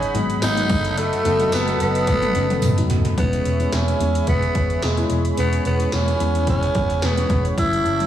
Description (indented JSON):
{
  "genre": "1980s-style pop",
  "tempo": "109 BPM",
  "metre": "4/4",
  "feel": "swing 55% on 16ths",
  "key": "E major from 3.2 s",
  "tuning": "A4 = 445 Hz",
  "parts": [
    { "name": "growling tenor saxophone", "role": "melody", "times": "0.0-8.1 s", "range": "G#3 to E4", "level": "-22 LUFS", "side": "right 1 dB", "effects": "digital delay" },
    { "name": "FM electric piano with soft pad layer", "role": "accompaniment", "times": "0.0-8.1 s", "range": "E3 to F#4", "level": "-26 LUFS", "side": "left 5 dB", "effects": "chorus, tremolo" },
    { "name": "warm analog pad", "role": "sustained chords", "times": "0.0-8.1 s", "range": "E4 to B5", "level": "-29 LUFS", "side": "right 2 dB", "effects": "chorus" },
    { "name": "warm horn section", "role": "stabs", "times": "0.0-2.9 s", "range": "D#3 to A4", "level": "-29 LUFS", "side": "right 4 dB", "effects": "digital delay" },
    { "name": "80s electronic pad drums", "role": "drums", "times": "0.0-8.1 s", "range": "hi-hat, kick drum, snare drum, tambourine, toms", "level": "-24 LUFS", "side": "equal", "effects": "gated reverb on snare and toms, gated reverb" },
    { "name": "vintage muted fingered electric bass", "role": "bass", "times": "0.1-8.1 s", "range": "E1 to E2", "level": "-22 LUFS", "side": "equal", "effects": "none" },
    { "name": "tambourine", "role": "percussion", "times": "0.4-2.8 s", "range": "none", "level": "-40 LUFS", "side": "right 10 dB", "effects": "none" }
  ],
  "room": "light reverb",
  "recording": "small room ambience",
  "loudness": "-17 LUFS",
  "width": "side -11 dB against mid",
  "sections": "0.0-3.2 A section; 3.2-8.1 B section",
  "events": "drum fill 2.1-3.2",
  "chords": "0.0 G#m7; 0.7 B7/F#; 3.2 E6"
}